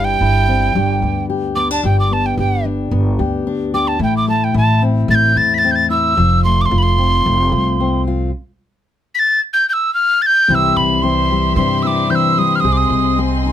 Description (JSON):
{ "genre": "acoustic folk duo or small band", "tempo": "111 BPM", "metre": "4/4", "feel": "straight", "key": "C major", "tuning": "A4 = 440 Hz", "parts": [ { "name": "breathy mellow tin whistle", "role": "melody", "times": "0.0-13.2 s", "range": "G5 to B6", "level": "-15 LUFS", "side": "right 1 dB", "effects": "none" }, { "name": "fingerpicked steel-string acoustic guitar", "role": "accompaniment", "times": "0.0-13.5 s", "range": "F2 to Ab4", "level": "-18 LUFS", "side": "left 6 dB", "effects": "none" }, { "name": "upright bass", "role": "bass", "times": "0.0-13.5 s", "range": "F1 to C3", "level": "-18 LUFS", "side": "right 1 dB", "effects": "none" }, { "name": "warm chamber string section", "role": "sustained chords", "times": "10.5-13.5 s", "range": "G4 to C6", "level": "-25 LUFS", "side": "equal", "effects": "none" } ], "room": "little or no reverb", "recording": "close, detailed microphones", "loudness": "-13 LUFS", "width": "side -10 dB against mid", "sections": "0.0-10.5 A section; 10.5-13.5 B section", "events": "tin whistle solo 0.0-10.5", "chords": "0.0 C/G; 0.8 G; 4.0 Am; 6.2 F; 8.3 N.C.; 10.5 C; 12.6 Ab/C" }